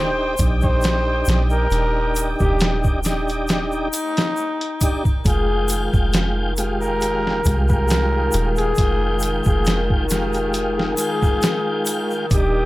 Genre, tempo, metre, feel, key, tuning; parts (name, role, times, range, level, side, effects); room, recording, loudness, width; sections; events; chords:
trip hop; 68 BPM; 4/4; swing 54% on 16ths; F dorian; A4 = 444 Hz
trumpet with bucket mute; melody; 0.0-12.7 s; Eb4 to C5; -24 LUFS; left 1 dB; tape echo
tonewheel organ; accompaniment; 0.0-12.7 s; Ab3 to G5; -24 LUFS; equal; chorus vibrato, harmonic tremolo, tape echo
warm studio string section; sustained chords; 0.0-12.7 s; Eb3 to G5; -28 LUFS; left 1 dB; vintage 12-bit sampler grit
soft 808-style bass; bass; 0.0-12.7 s; Eb1 to C2; -22 LUFS; equal
trip hop sampler-style drum kit; drums; 0.4-12.5 s; hi-hat, kick drum, snare drum; -21 LUFS; equal
egg shaker and triangle; percussion; 0.4-12.5 s; -32 LUFS; left 2 dB
light reverb, studio reverb; -17 LUFS; side -18 dB against mid
0.0-12.7 A section
0.0 Ebmaj7; 5.3 Fmadd9